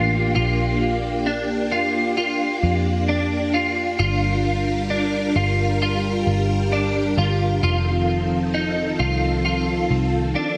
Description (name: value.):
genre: dream pop.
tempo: 66 BPM.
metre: 4/4.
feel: straight.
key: Bb major.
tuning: A4 = 442 Hz.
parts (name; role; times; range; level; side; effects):
string machine, violins; sustained chords; 0.0-10.6 s; Eb3 to Bb4; -26 LUFS; equal; ensemble chorus.
clean electric guitar; arpeggios; 0.0-10.6 s; D4 to F4; -25 LUFS; equal; ensemble chorus, digital delay.
vintage muted picked electric bass; bass; 0.0-10.3 s; F1 to F2; -26 LUFS; equal; none.
room: moderate plate reverb, RT60 2.4 s.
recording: none.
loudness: -21 LUFS.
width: mono.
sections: 0.0-10.6 A section.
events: none.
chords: 0.0 Bb6; 4.0 Gm7; 7.6 F7.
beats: | 0.36 1.27 2.17 3.08 | 3.99 4.90 5.81 6.72 | 7.63 8.54 9.45 10.36.